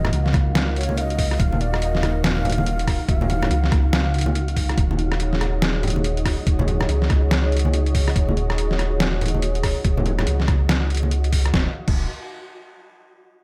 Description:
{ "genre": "deep dubstep", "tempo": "142 BPM", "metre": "4/4", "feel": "swing 61% on 16ths, half-time", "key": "Eb minor", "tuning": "A4 = 440 Hz", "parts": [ { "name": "breathy ney", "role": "melody", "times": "0.0-4.3 s", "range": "Db5 to F5", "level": "-33 LUFS", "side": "equal", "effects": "dub echo" }, { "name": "dark analog pad", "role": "sustained chords", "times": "0.0-11.7 s", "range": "Eb4 to F5", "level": "-32 LUFS", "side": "equal", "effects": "chorus" }, { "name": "dark detuned saw bass", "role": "bass", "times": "0.0-12.1 s", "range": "Eb1 to Db2", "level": "-24 LUFS", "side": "equal", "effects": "none" }, { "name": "trip hop sampler-style drum kit", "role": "drums", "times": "0.0-11.9 s", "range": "crash cymbal, hi-hat, rim click, snare drum", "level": "-28 LUFS", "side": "equal", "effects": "overdrive, studio reverb" }, { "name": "congas", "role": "percussion", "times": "0.0-11.1 s", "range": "none", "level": "-30 LUFS", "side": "equal", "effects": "dub echo" }, { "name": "flickering grainy texture", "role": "texture", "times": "0.0-11.6 s", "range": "Gb4 to F5", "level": "-36 LUFS", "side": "equal", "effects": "built-in reverb" }, { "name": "electronic kick drum", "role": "drums", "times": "0.3-11.9 s", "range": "none", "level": "-24 LUFS", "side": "equal", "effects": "overdrive, studio reverb" } ], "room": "light reverb", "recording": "none", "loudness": "-21 LUFS", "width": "mono", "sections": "0.0-11.5 A section; 11.5-13.2 B section", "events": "none", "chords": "0.0 Ebmadd9; 11.5 Ebsus2", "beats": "0.13 0.55 0.97 | 1.40 1.82 2.24 2.66 | 3.09 3.51 3.93 4.35 | 4.78 5.20 5.62 6.04 | 6.47 6.89 7.31 7.73 | 8.16 8.58 9.00 9.42 | 9.85 10.27 10.69 11.12 | 11.54 11.96" }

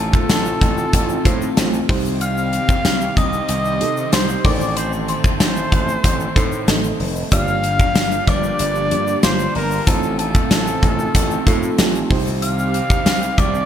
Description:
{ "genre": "1980s-style pop", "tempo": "94 BPM", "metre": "4/4", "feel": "straight", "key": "unclear", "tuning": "A4 = 440 Hz", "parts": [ { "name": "clear flugelhorn", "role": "melody", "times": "0.0-13.7 s", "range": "A4 to F5", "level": "-23 LUFS", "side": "equal", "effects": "ping-pong delay" }, { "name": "synth chime", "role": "second line", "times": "0.0-13.7 s", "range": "A5 to F6", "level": "-30 LUFS", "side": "left 4 dB", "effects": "ensemble chorus, ping-pong delay" }, { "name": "FM electric piano with auto-pan", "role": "accompaniment", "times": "0.0-13.7 s", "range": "G2 to F5", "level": "-26 LUFS", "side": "right 3 dB", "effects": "none" }, { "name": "sludgy distorted guitar", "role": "accompaniment", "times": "0.0-13.7 s", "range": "F2 to C4", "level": "-31 LUFS", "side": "equal", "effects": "overdrive, wide subtle chorus" }, { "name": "phased analog pad", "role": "sustained chords", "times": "0.0-13.7 s", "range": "Eb3 to A4", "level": "-26 LUFS", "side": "equal", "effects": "phaser, chorus" }, { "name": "gritty slap bass", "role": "bass", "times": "0.0-13.6 s", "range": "F1 to C3", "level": "-24 LUFS", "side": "equal", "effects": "overdrive" }, { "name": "gated 80s drum kit", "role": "drums", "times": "0.1-13.5 s", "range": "hi-hat, kick drum, snare drum, tambourine", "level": "-17 LUFS", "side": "equal", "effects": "gated reverb" }, { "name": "egg shaker", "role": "percussion", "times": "0.1-13.7 s", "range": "none", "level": "-37 LUFS", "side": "left 7 dB", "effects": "none" } ], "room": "light reverb, small room ambience", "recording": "bright 1980s-style digital production", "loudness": "-15 LUFS", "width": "side -9 dB against mid", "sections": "0.0-13.7 A section", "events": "none", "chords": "0.0 F7/A; 1.9 Cm; 4.4 Adim; 7.3 Gm7; 9.9 F7/A; 12.1 Cm", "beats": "0.30 0.94 1.57 | 2.21 2.85 3.49 4.13 | 4.76 5.40 6.04 6.68 | 7.32 7.96 8.60 9.23 | 9.87 10.51 11.15 11.79 | 12.43 13.06" }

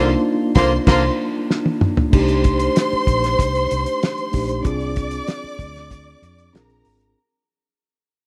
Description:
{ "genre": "lush 1970s-style soul", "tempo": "95 BPM", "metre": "4/4", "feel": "straight", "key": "C dorian", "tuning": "A4 = 440 Hz", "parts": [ { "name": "warm studio violin section", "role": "second line", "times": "0.0-7.2 s", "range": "Bb4 to D6", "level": "-25 LUFS", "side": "equal", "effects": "none" }, { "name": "mellow tine electric piano", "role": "accompaniment", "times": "0.0-7.2 s", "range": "A3 to Ab4", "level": "-24 LUFS", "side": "equal", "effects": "none" }, { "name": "warm horn section", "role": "stabs", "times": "0.0-1.0 s", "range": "D3 to F4", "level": "-27 LUFS", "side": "equal", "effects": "none" }, { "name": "vintage muted fingered electric bass", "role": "bass", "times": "0.0-7.1 s", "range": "Ab1 to F2", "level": "-26 LUFS", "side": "equal", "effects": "none" }, { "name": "cloth-damped thuddy drum kit", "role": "drums", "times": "0.6-7.2 s", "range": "crash cymbal, hi-hat, kick drum, snare drum, toms", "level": "-22 LUFS", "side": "equal", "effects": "none" } ], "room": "light reverb, small room ambience", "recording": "none", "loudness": "-19 LUFS", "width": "mono", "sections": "0.0-2.1 A section; 2.1-7.2 B section", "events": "band accent 0.0-2.1; tine electric piano fill 0.9-2.1; drum fill 1.5-2.1; fade-out 2.1-7.2", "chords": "0.0 Cm11; 2.1 Cm69; 4.6 Fm6/C; 6.5 Bb7", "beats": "0.24 0.87 1.50 | 2.13 2.76 3.39 4.02 | 4.65 5.28 5.91 6.54" }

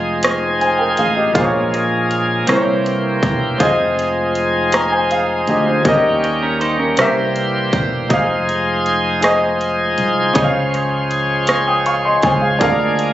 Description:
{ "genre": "slow gospel", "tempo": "53 BPM (dotted quarters)", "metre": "6/8", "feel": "straight", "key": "unclear", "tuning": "A4 = 440 Hz", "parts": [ { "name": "clear baby grand piano", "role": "accompaniment", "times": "0.0-13.1 s", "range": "Bb2 to Eb6", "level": "-18 LUFS", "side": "equal", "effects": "none" }, { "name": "bright tonewheel organ", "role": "sustained chords", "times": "0.0-13.1 s", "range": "Eb3 to C5", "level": "-18 LUFS", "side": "equal", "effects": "fast rotary speaker, overdrive" }, { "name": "fingered electric bass", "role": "bass", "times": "0.0-13.1 s", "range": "E1 to Eb2", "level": "-23 LUFS", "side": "equal", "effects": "none" }, { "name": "garage drum kit", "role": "drums", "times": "0.2-13.1 s", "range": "hi-hat, kick drum, rim click", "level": "-18 LUFS", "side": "equal", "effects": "overdrive" }, { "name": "clean electric guitar", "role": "second line", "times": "6.4-7.2 s", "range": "Db4 to C5", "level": "-21 LUFS", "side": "right 1 dB", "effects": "none" } ], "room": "light reverb", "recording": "recorded on a phone in the room, club reverb, nothing above 7.7 kHz", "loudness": "-14 LUFS", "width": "side -13 dB against mid", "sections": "0.0-13.1 A section", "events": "none", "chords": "0.0 Fm7; 1.4 Bbm7; 2.5 C7b9; 3.6 Fm7; 5.9 Eb7; 7.0 C7; 8.1 Fm7; 10.4 Dbmaj7; 12.6 Bb7/D", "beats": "0.23 | 1.35 2.48 | 3.61 4.73 | 5.86 6.98 | 8.11 9.23 | 10.36 11.49 | 12.61" }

